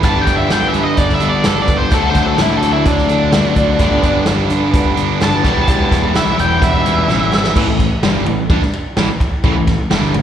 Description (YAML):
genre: classic rock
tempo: 128 BPM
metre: 4/4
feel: straight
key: unclear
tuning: A4 = 438 Hz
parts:
  - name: octave-fuzz lead guitar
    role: melody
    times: 0.0-7.5 s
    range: D4 to A5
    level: -19 LUFS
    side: left 2 dB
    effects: distortion, plate reverb
  - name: picked steel-string acoustic guitar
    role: accompaniment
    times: 0.0-7.6 s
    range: E2 to G4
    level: -28 LUFS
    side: right 2 dB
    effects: none
  - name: distorted electric guitar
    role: riff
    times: 0.0-10.2 s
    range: G2 to E4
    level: -19 LUFS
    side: right 10 dB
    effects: overdrive, slapback echo
  - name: overdriven semi-hollow guitar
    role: riff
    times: 0.0-10.2 s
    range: E2 to G4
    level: -19 LUFS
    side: left 8 dB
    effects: none
  - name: fuzz picked electric bass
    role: bass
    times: 0.0-10.2 s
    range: E1 to A2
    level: -19 LUFS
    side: equal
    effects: overdrive
  - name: vintage drum kit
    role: drums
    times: 0.0-10.2 s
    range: crash cymbal, hi-hat, kick drum, ride cymbal, snare drum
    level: -17 LUFS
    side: equal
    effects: none
room: light reverb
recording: live gig heard through the venue's PA, recital hall reverb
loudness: -12 LUFS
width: side -9 dB against mid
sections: 0.0-7.6 A section; 7.6-10.2 B section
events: lead electric guitar solo 0.0-7.6; drum fill 7.1-7.6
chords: 0.0 G; 1.9 D; 3.8 G; 5.4 Em; 7.6 A5